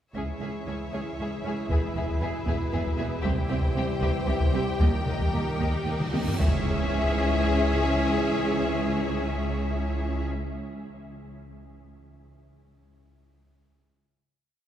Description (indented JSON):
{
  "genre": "cinematic, epic orchestral film score",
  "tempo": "77 BPM (dotted quarters)",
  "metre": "6/8",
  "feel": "straight",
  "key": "unclear",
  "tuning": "A4 = 440 Hz",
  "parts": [
    { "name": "warm symphonic violin section", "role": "melody", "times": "0.1-10.3 s", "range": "D#5 to E5", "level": "-37 LUFS", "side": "left 4 dB", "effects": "none" },
    { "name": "warm symphonic viola section", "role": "accompaniment", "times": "0.1-10.3 s", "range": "A#3 to C#4", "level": "-36 LUFS", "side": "right 1 dB", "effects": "none" },
    { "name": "rich symphonic string section", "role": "sustained chords", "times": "0.1-10.3 s", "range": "C#4 to G5", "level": "-34 LUFS", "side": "left 1 dB", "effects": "none" },
    { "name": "taiko ensemble", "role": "drums", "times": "0.1-7.4 s", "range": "none", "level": "-28 LUFS", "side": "equal", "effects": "none" },
    { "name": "warm symphonic violin section", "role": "second line", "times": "0.2-10.2 s", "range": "G4 to G#4", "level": "-35 LUFS", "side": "left 2 dB", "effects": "none" },
    { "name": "clear trombone section", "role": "sustained chords", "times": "0.2-10.3 s", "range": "G#2 to E3", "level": "-36 LUFS", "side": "right 1 dB", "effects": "none" },
    { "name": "warm French horn section", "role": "sustained chords", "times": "0.2-10.3 s", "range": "G3 to G4", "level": "-36 LUFS", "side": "left 2 dB", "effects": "none" },
    { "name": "rich symphonic cello section", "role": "bass", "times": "0.2-10.3 s", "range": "C2 to E2", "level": "-33 LUFS", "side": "right 2 dB", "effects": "none" },
    { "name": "rich symphonic double bass section", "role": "bass", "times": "0.2-10.3 s", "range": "E1 to D#2", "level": "-33 LUFS", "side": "right 1 dB", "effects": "none" },
    { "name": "cymbal swell and impact", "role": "sound effects", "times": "5.8-8.0 s", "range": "none", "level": "-40 LUFS", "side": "equal", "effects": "none" }
  ],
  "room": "wet cathedral reverb, RT60 4.8 s",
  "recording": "recorded in a church or concert hall",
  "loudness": "-24 LUFS",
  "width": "side -10 dB against mid",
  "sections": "0.2-6.4 theme; 6.4-9.5 final chord",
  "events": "cymbal swell 5.8-6.4; drum fill 6.0-6.4; impact 6.4-8.0",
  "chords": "0.2 C#m; 1.7 E; 3.2 C; 4.8 D#; 6.4 C#m",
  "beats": "| 0.15 0.93 | 1.70 2.47 | 3.24 4.02 | 4.81 5.61 | 6.40 7.17 | 7.95 8.73"
}